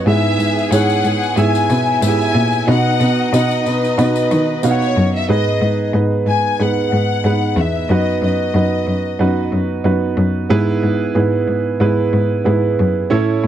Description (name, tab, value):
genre	piano-driven pop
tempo	92 BPM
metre	4/4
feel	swing 56% on 16ths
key	unclear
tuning	A4 = 440 Hz
part	rich studio violin section	second line	0.0-5.2 s	D#4 to G#5	-25 LUFS	left 3 dB	none
part	warm grand piano	accompaniment	0.0-13.5 s	G#2 to F#5	-18 LUFS	right 4 dB	none
part	warm studio violin section	melody	0.1-9.5 s	B4 to G#5	-20 LUFS	left 4 dB	none
part	rich cello	bass	0.1-13.5 s	E2 to D#3	-17 LUFS	left 1 dB	none
part	tambourine	percussion	0.4-5.0 s	none	-33 LUFS	left 25 dB	none
room	little or no reverb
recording	dry, close 1970s-style studio recording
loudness	-14 LUFS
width	side -10 dB against mid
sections	0.0-5.3 A section; 5.3-13.5 B section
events	none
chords	0.1 E/G#; 2.7 B; 5.3 G#m; 7.9 B/F#; 10.5 E/G#